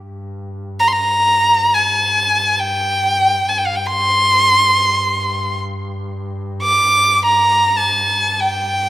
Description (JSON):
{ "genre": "Arabic maqam ensemble", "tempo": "free time", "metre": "none", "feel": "none", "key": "G maqam bayati", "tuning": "A4 = 440 Hz", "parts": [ { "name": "dark double bass", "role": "drone", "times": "0.0-8.9 s", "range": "G2", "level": "-27 LUFS", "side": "equal", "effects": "none" }, { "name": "rich violin", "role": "melody", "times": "0.8-8.9 s", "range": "F5 to D6", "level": "-13 LUFS", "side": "equal", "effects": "none" } ], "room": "wet plate reverb, RT60 2.5 s", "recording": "rough home demo mix", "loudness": "-13 LUFS", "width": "side -14 dB against mid", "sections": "0.0-8.9 A section", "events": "none", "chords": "none", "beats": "free time" }